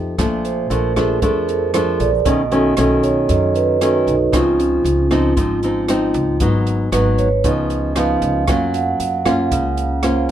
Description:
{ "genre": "bossa nova", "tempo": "116 BPM", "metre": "4/4", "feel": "straight", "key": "unclear", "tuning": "A4 = 437 Hz", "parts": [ { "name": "nylon-string guitar", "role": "accompaniment", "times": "0.0-10.3 s", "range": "F2 to G4", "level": "-18 LUFS", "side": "left 1 dB", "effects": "none" }, { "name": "upright bass", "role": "bass", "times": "0.0-10.3 s", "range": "Ab1 to F#2", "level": "-23 LUFS", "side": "equal", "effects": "none" }, { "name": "open jazz drum kit", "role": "drums", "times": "0.2-10.2 s", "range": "hi-hat, kick drum, rim click", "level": "-24 LUFS", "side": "equal", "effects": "none" }, { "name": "vibraphone with soft mallets", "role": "accompaniment", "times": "0.4-10.3 s", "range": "Db4 to Gb5", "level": "-18 LUFS", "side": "right 4 dB", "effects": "none" } ], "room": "light reverb", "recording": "minimal, uncompressed stereo recording", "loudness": "-14 LUFS", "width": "side -10 dB against mid", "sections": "0.2-10.3 A section", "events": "vibraphone solo 0.2-10.3", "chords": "0.2 Bbmaj7; 2.3 B9; 4.3 Dbmaj9; 6.4 Abm7; 7.4 Db9; 8.5 Gbmaj7", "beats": "| 0.18 0.70 1.22 1.74 | 2.26 2.78 3.30 3.82 | 4.33 4.85 5.37 5.89 | 6.41 6.93 7.45 7.96 | 8.48 9.00 9.52 10.04" }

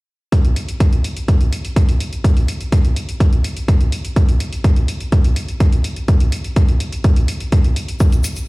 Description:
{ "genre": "techno", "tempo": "125 BPM", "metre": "4/4", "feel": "straight", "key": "none", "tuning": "none", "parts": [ { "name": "electronic hi-hat", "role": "drums", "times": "0.3-8.5 s", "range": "none", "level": "-30 LUFS", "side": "left 1 dB", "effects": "overdrive, studio ambience" }, { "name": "electronic kick drum", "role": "drums", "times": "0.3-8.1 s", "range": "none", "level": "-13 LUFS", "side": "equal", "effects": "studio ambience" }, { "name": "egg shaker", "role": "percussion", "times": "8.0-8.5 s", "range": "none", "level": "-30 LUFS", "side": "left 4 dB", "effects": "none" } ], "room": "digital ambience", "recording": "played on a big sound system in a bare room, large studio reverb", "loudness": "-14 LUFS", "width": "side -24 dB against mid", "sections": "0.3-8.5 A section", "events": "none", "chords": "none", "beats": "| 0.32 0.80 1.28 1.76 | 2.24 2.72 3.20 3.68 | 4.16 4.64 5.12 5.60 | 6.08 6.56 7.04 7.52 | 8.00" }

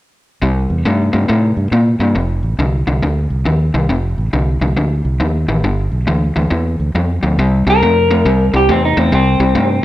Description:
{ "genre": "electric blues shuffle", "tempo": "138 BPM", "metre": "4/4", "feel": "swing 64% on 8ths", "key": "C mixolydian", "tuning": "A4 = 440 Hz", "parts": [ { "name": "crunchy overdriven guitar", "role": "riff", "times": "0.4-9.8 s", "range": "F2 to Bb3", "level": "-16 LUFS", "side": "left 1 dB", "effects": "spring reverb" }, { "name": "fingered electric bass", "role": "bass", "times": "0.4-9.8 s", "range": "F1 to Bb2", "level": "-16 LUFS", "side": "right 1 dB", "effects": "none" }, { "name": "electric guitar through a small old amp", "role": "melody", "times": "7.7-9.8 s", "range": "C4 to Bb4", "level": "-13 LUFS", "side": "equal", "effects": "plate reverb" } ], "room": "light reverb", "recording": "none", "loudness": "-12 LUFS", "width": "side -14 dB against mid", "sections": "0.4-7.4 A section; 7.4-9.8 B section", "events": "none", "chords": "0.4 C7(no3); 2.2 F7(no3); 5.6 G7(no3); 7.4 C7", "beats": "| 0.42 0.85 1.29 1.72 | 2.16 2.59 3.03 3.46 | 3.90 4.33 4.77 5.20 | 5.64 6.07 6.51 6.95 | 7.38 7.82 8.25 8.69 | 9.12 9.55" }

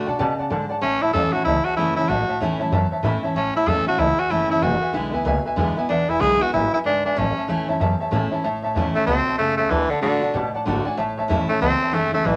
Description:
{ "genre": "rockabilly", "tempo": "189 BPM", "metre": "4/4", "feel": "swing 62% on 8ths", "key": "A major", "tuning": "A4 = 437 Hz", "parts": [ { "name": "picked steel-string acoustic guitar", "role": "accompaniment", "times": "0.0-12.4 s", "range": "E2 to F#4", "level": "-28 LUFS", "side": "equal", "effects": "none" }, { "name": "upright bass", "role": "bass", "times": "0.0-12.4 s", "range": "E1 to D3", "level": "-28 LUFS", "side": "equal", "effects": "none" }, { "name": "tack piano", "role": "accompaniment", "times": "0.1-12.4 s", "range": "B4 to B5", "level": "-28 LUFS", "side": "equal", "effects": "none" }, { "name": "raspy tenor saxophone", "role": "melody", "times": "0.8-12.4 s", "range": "D3 to A4", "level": "-22 LUFS", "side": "equal", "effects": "none" } ], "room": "moderate studio reverb, RT60 0.7 s", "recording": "none", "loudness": "-21 LUFS", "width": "mono", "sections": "0.0-8.4 A section; 8.4-12.4 B section", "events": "honky-tonk piano fill 0.3-0.8; tenor saxophone solo 8.4-12.4", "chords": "0.0 D; 0.8 A; 4.6 E7; 7.2 A; 9.7 D; 11.0 A", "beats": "0.19 0.51 | 0.82 1.14 1.46 1.77 | 2.09 2.40 2.72 3.04 | 3.35 3.67 3.99 4.31 | 4.62 4.94 5.26 5.58 | 5.89 6.21 6.53 6.84 | 7.16 7.48 7.80 8.12 | 8.44 8.75 9.07 9.39 | 9.71 10.03 10.34 10.66 | 10.98 11.30 11.62 11.94 | 12.25" }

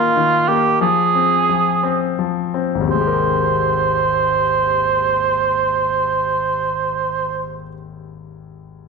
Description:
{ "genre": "six-eight pop ballad", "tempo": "53-62 BPM (dotted quarters)", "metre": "6/8", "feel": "straight", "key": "Ab major", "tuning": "A4 = 440 Hz", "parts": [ { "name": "mellow cor anglais", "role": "melody", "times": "0.0-7.6 s", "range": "F4 to C5", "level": "-16 LUFS", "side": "right 5 dB", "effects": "none" }, { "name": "bright concert grand piano", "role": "accompaniment", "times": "0.0-8.9 s", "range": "Ab1 to Bb4", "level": "-22 LUFS", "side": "left 9 dB", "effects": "none" } ], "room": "wet echo chamber reverb, RT60 1.3 s", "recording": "1960s-style stereo", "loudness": "-15 LUFS", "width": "side -4 dB against mid", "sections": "0.0-2.9 A section; 2.9-7.4 B section", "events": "slowing down 0.0-2.9", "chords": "0.0 Eb5; 0.8 Fm; 2.9 Abmaj9", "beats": "| 0.80 1.81 | 2.90 4.02 | 5.14 6.27" }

